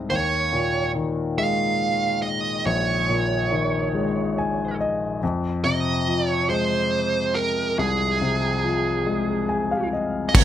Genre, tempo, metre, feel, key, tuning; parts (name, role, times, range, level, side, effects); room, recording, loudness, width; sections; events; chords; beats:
six-eight pop ballad; 47 BPM (dotted quarters); 6/8; straight; A4 = 440 Hz
clear grand piano; accompaniment; 0.0-10.4 s; Bb1 to Ab5; -23 LUFS; left 3 dB
dark smooth lead guitar; melody; 0.1-10.4 s; Ab4 to F5; -24 LUFS; right 4 dB; overdrive
modern studio drum kit; drums; 10.3-10.4 s; crash cymbal, kick drum; -11 LUFS; right 1 dB
light reverb; -21 LUFS; side -11 dB against mid
0.0-10.3 A section
grand piano fill 3.9-5.2, 9.1-10.3
0.1 Eb7sus4; 5.2 Fm
| 0.10 1.38 | 2.66 3.94 | 5.22 6.50 | 7.78 9.06 | 10.35